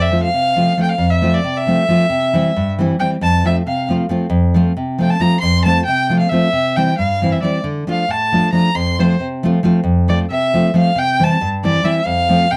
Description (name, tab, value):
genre	balkan folk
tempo	271 BPM (eighths)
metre	5/8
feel	straight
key	F major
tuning	A4 = 440 Hz
part	rich fiddle	melody	0.0-12.6 s	C5 to C6	-20 LUFS	equal	none
part	nylon-string guitar	accompaniment	0.0-12.6 s	F2 to F4	-18 LUFS	equal	none
room	little or no reverb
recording	dry, close 1970s-style studio recording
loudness	-16 LUFS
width	mono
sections	0.0-12.6 A section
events	fiddle solo 0.0-12.6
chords	0.0 F; 2.1 C; 3.2 F; 6.5 C; 7.6 Dm; 8.7 F; 11.0 C; 12.1 F